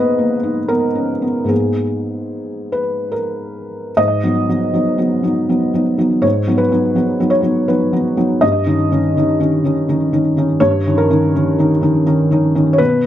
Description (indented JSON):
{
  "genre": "neoclassical minimalist piano",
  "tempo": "68-84 BPM",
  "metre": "3/4",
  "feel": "rubato",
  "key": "G# minor",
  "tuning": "A4 = 439 Hz",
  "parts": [
    { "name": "felt-muted upright piano", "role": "solo", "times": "0.0-13.1 s", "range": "G2 to D#5", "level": "-14 LUFS", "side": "equal", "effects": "slapback echo" }
  ],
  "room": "light reverb, small room ambience",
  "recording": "dry, close 1970s-style studio recording",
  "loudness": "-13 LUFS",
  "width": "side -11 dB against mid",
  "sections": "0.0-4.0 A section; 4.0-13.1 B section",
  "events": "none",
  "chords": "0.0 G#madd9; 4.0 G#m7; 8.4 D#7/G"
}